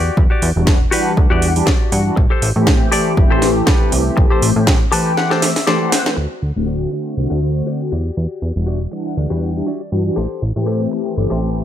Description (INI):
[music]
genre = filtered disco house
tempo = 120 BPM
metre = 4/4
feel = swing 55% on 16ths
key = A dorian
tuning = A4 = 440 Hz
[part]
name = direct-recorded clean electric guitar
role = riff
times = 0.0-11.5 s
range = F#4 to A5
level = -22 LUFS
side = left 4 dB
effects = phaser, sidechain pumping, low-pass filter
[part]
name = plucky analog bass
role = bass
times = 0.0-11.6 s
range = D1 to A2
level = -18 LUFS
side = equal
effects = sidechain pumping, low-pass filter
[part]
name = electronic kick drum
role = drums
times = 0.2-4.8 s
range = none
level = -14 LUFS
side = equal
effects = small room ambience
[part]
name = house drum kit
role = drums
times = 0.4-6.2 s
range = hi-hat, snare drum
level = -20 LUFS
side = right 1 dB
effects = sidechain pumping on hats, small room ambience
[part]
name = mellow synth brass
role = accompaniment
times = 0.6-11.6 s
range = D3 to F#5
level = -19 LUFS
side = left 1 dB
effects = chorus, phaser, cassette tape, sidechain pumping, low-pass filter
[sound]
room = light reverb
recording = none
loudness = -14 LUFS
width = side -10 dB against mid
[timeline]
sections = 0.0-6.2 A section; 6.2-11.6 B section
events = clean electric guitar fill 1.4-2.2, 4.7-6.2, 9.2-10.2; drum fill 5.2-6.2; filter sweep 6.2-11.6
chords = 0.0 Em9; 2.2 Am7; 6.2 D7; 7.9 Em9; 10.2 Am7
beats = | 0.17 0.67 1.17 1.67 | 2.17 2.67 3.17 3.67 | 4.17 4.67 5.17 5.67 | 6.17 6.67 7.17 7.67 | 8.17 8.67 9.17 9.67 | 10.17 10.67 11.17